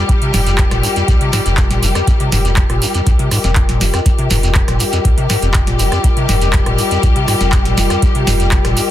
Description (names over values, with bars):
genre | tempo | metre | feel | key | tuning
acid house | 121 BPM | 4/4 | straight | unclear | A4 = 440 Hz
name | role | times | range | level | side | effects
rich symphonic string section | sustained chords | 0.0-8.9 s | G3 to G4 | -20 LUFS | left 3 dB | sidechain pumping
acid bass, square | riff | 0.0-8.8 s | F2 to C3 | -19 LUFS | equal | overdrive, ensemble chorus, sidechain pumping, ping-pong delay
warbly tape-like pad | texture | 0.0-8.9 s | F4 to G5 | -22 LUFS | left 3 dB | chorus, built-in reverb, sidechain pumping
booming analog drum machine | drums | 0.1-8.9 s | handclaps, hi-hat, rim click, snare drum | -20 LUFS | right 1 dB | none
electronic kick drum | drums | 0.1-8.6 s | none | -14 LUFS | equal | none
shekere | percussion | 0.1-8.9 s | none | -25 LUFS | right 3 dB | none
warm sub bass | bass | 0.3-8.7 s | F1 to C2 | -18 LUFS | equal | tube saturation, sidechain pumping
room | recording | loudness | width
digital ambience | dense, heavily limited modern master | -11 LUFS | side -12 dB against mid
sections
0.0-8.9 A section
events
none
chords
0.0 F7(no3)